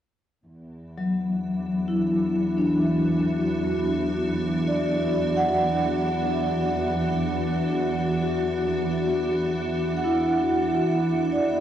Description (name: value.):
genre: ambient.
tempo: free time.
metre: none.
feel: none.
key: unclear.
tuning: A4 = 440 Hz.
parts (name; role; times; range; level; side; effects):
evolving wavetable pad; sustained chords; 1.1-11.6 s; E3 to E5; -26 LUFS; equal; ensemble chorus, built-in reverb, cassette tape.
dark studio cello section; bass; 0.5-11.6 s; E2; -32 LUFS; equal; none.
vibraphone with soft mallets; arpeggios; 1.0-11.6 s; F#3 to F#5; -24 LUFS; equal; cassette tape, analog delay.
room: wet small room ambience, RT60 0.5 s.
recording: home recording on cassette.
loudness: -22 LUFS.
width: side -10 dB against mid.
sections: 0.5-11.6 A section.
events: none.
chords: 0.5 Dadd9/E.